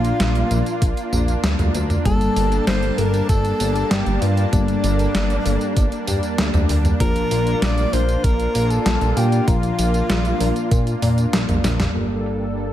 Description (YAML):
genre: synthwave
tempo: 97 BPM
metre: 4/4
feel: straight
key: G minor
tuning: A4 = 440 Hz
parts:
  - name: breathy tenor saxophone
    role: melody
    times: 0.0-11.3 s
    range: D4 to D5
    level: -25 LUFS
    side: left 1 dB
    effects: ping-pong delay
  - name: lush unison pad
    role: sustained chords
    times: 0.0-12.7 s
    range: G3 to A5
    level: -25 LUFS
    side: equal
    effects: chorus, sidechain pumping
  - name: FM electric piano with soft pad layer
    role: stabs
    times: 0.0-12.7 s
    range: G2 to Bb4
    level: -26 LUFS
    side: left 3 dB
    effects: chorus, phaser, cassette tape, low-pass filter
  - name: chorused synth bass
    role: bass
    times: 0.0-12.7 s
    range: G1 to Bb2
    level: -20 LUFS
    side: equal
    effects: tube saturation
  - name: detuned 8-bit digital drum machine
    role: drums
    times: 0.0-12.7 s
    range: crash cymbal, hi-hat, snare drum, tambourine, toms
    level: -24 LUFS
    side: equal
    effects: low-pass filter on hats, small room ambience, low-pass filter on cymbals, low-pass filter on perc, low-pass filter on snare, low-pass filter on toms, gated reverb
  - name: electronic kick drum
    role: drums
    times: 0.8-10.8 s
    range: none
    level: -19 LUFS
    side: equal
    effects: small room ambience
room: light reverb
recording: none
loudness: -17 LUFS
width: side -12 dB against mid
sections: 0.0-12.0 A section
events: drum fill 11.6-12.0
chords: 0.0 Bb; 2.1 Gmadd9; 7.0 Bb; 12.0 Gmadd9